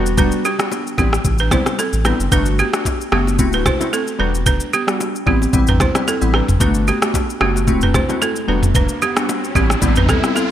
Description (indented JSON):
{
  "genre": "afrobeats",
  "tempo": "112 BPM",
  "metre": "4/4",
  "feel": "swing 55% on 16ths",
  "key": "G major",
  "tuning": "A4 = 440 Hz",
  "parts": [
    { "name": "glassy wavetable pluck", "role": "accompaniment", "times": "0.0-10.4 s", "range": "G3 to F#4", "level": "-20 LUFS", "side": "left 2 dB", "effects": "chorus" },
    { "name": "warm sub bass", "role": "bass", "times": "0.0-10.1 s", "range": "D1 to A1", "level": "-19 LUFS", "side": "equal", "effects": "none" },
    { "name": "afro-pop drum kit", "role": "drums", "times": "0.1-10.5 s", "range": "kick drum, rim click, shaker, toms", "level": "-19 LUFS", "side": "equal", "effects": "gated reverb" },
    { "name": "balafon", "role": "riff", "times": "0.2-10.5 s", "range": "B3 to C5", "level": "-21 LUFS", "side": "right 4 dB", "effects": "ping-pong delay" },
    { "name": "congas and bongos", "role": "percussion", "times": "0.2-10.5 s", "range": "none", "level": "-27 LUFS", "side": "left 2 dB", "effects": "none" },
    { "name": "riser", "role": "sound effects", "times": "8.3-10.5 s", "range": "none", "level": "-26 LUFS", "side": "left 1 dB", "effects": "none" }
  ],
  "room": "light reverb, digital ambience",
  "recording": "bright 1980s-style digital production",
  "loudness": "-14 LUFS",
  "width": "side -11 dB against mid",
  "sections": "0.0-2.3 A section; 2.3-10.5 B section",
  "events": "riser 8.3-10.5",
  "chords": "0.0 Em9; 1.0 Am7; 2.3 Gmaj9; 3.4 D7; 4.2 Em9; 5.3 Am7; 6.6 Gmaj9; 7.7 D7; 8.5 Em9; 9.6 Am7",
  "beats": "| 0.18 0.71 1.25 1.78 | 2.32 2.85 3.39 3.93 | 4.46 5.00 5.53 6.07 | 6.61 7.14 7.68 8.21 | 8.75 9.28 9.82 10.36"
}